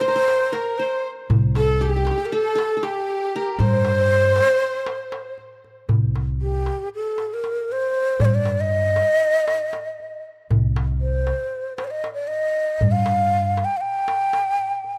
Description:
Turkish makam ensemble; 234 BPM (eighths); 9/8; straight; C makam huseyni; A4 = 440 Hz
breathy ney; melody; 0.0-15.0 s; G4 to G5; -23 LUFS; equal
clear studio violin section; second line; 0.0-5.4 s; G4 to C5; -35 LUFS; equal
qanun; second line; 0.0-5.3 s; G4 to C5; -31 LUFS; equal
darbuka; percussion; 0.0-14.9 s; -25 LUFS; equal
upright bass; bass; 1.3-13.6 s; C2 to G2; -24 LUFS; equal
light reverb, small room ambience; dry, close 1970s-style studio recording; -21 LUFS; mono
0.0-5.9 A section; 5.9-15.0 B section

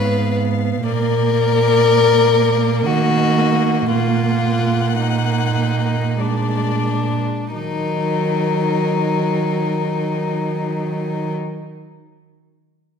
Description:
classical, slow romantic movement for string quartet; 42-62 BPM; 3/4; rubato; Eb minor; A4 = 440 Hz
rich violin; melody; 0.0-11.3 s; Bb4 to Gb5; -25 LUFS; left 9 dB
warm violin; second line; 0.0-11.3 s; D4 to Cb5; -20 LUFS; left 4 dB
warm viola; accompaniment; 0.0-11.3 s; Gb3 to Cb4; -23 LUFS; right 2 dB
warm cello; bass; 0.0-11.3 s; Ab2 to Eb3; -20 LUFS; right 4 dB
moderate scoring stage reverb, RT60 1.7 s; -16 LUFS; side -6 dB against mid
0.0-7.5 A section; 7.5-11.2 B section
slowing down 0.0-7.5
0.0 Fdim/Ab; 0.8 Bb; 2.9 Ebm; 3.9 Ebm/Bb; 6.2 Bb7; 7.5 Ebm

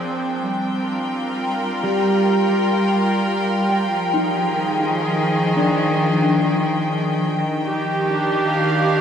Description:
ambient; 69 BPM; 4/4; straight; A4 = 440 Hz
clear studio string section; sustained chords; 0.0-9.0 s; Bb2 to G5; -19 LUFS; equal
electric guitar at the edge of break-up; arpeggios; 0.0-7.7 s; G3 to G5; -23 LUFS; equal; wide subtle chorus, tape echo
wet cathedral reverb, RT60 6.0 s; dreamy mix soaked in reverb; -17 LUFS; side -8 dB against mid
0.0-9.0 A section
fade-in on string section 0.0-9.0
0.4 Gm7; 3.9 Fm9; 7.4 Ebmaj9

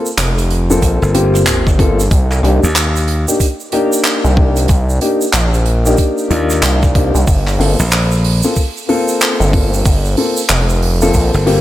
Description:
glitch hop; 93 BPM; 4/4; swing 62% on 16ths; G minor; A4 = 436 Hz
dark concert grand piano; stabs; 0.0-11.6 s; Bb3 to A4; -16 LUFS; left 2 dB; sidechain pumping, low-pass filter, diffuse ambient delay
egg shaker; percussion; 0.1-11.4 s; -24 LUFS; right 4 dB
gritty driven synth bass; bass; 0.2-11.3 s; F1 to C2; -13 LUFS; equal
unplugged drum kit; drums; 0.2-11.6 s; handclaps, hi-hat, rim click; -19 LUFS; right 1 dB
electronic kick drum; drums; 0.8-11.3 s; -13 LUFS; equal
glassy slap bass; bass; 1.0-11.6 s; G1 to Eb2; -14 LUFS; equal
light reverb, studio reverb; -11 LUFS; side -14 dB against mid
0.0-11.6 A section
filter sweep on grand piano 0.0-11.6
0.0 Gm11; 2.1 Cm9; 7.3 Gm11

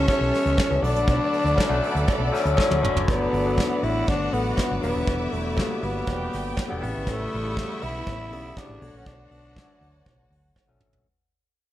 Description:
disco; 120 BPM; 4/4; straight; A4 = 438 Hz
growling tenor saxophone; melody; 0.0-10.5 s; A3 to E4; -27 LUFS; left 1 dB
rich studio violin section; second line; 0.0-11.0 s; B3 to G5; -33 LUFS; equal
barky tine electric piano; accompaniment; 0.0-11.1 s; C3 to C#5; -28 LUFS; left 3 dB; overdrive, phaser
rich studio string section; sustained chords; 0.0-11.0 s; A4 to D6; -37 LUFS; equal
hollow-body short-scale fingered electric bass; bass; 0.0-11.0 s; Eb1 to D2; -28 LUFS; equal
soft brush drum kit; drums; 0.1-11.0 s; hi-hat, kick drum, snare drum, toms; -26 LUFS; equal
cowbell; percussion; 0.1-10.7 s; -37 LUFS; right 7 dB
light reverb, studio ambience; dark, warm production; -21 LUFS; side -13 dB against mid
0.0-3.1 A section; 3.1-11.1 B section
drum fill 2.6-3.1, 10.6-11.1; fade-out 3.1-11.1
0.0 A7; 0.8 Bm7; 3.1 Gmaj7; 4.8 Em7; 6.8 A7; 8.8 Bm7

